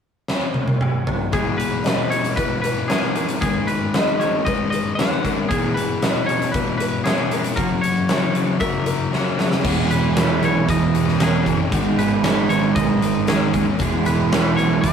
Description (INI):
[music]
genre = rock, shoegaze and dream pop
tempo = 116 BPM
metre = 4/4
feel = straight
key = E lydian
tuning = A4 = 437 Hz
[part]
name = huge arena drum kit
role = drums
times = 0.3-14.9 s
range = crash cymbal, hi-hat, kick drum, snare drum, toms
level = -22 LUFS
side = equal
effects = none
[part]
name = twangy electric guitar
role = melody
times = 1.3-14.9 s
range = G#4 to F#5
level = -26 LUFS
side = left 1 dB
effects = none
[part]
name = picked twelve-string acoustic guitar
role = arpeggios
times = 1.3-14.9 s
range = F#4 to D#5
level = -29 LUFS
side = left 2 dB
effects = none
[part]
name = fuzz guitar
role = riff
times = 1.3-14.9 s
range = E2 to G#3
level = -24 LUFS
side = left 5 dB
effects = distortion
[part]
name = overdriven semi-hollow guitar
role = riff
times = 1.3-14.9 s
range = E2 to G#4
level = -23 LUFS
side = right 6 dB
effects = none
[part]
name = vintage muted picked electric bass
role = bass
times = 9.6-14.9 s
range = E1 to D#2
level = -26 LUFS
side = equal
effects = none
[sound]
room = moderate studio ambience, RT60 0.5 s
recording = rough rehearsal-room recording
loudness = -17 LUFS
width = side -7 dB against mid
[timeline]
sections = 0.0-1.3 A section; 1.3-9.6 B section; 9.6-14.9 C section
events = drum fill 0.3-1.3, 9.1-9.6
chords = 0.0 N.C.; 1.3 Emaj7; 3.4 G#m; 5.5 Emaj7; 7.6 F#7; 9.6 Emaj7; 11.7 G#m9; 13.8 E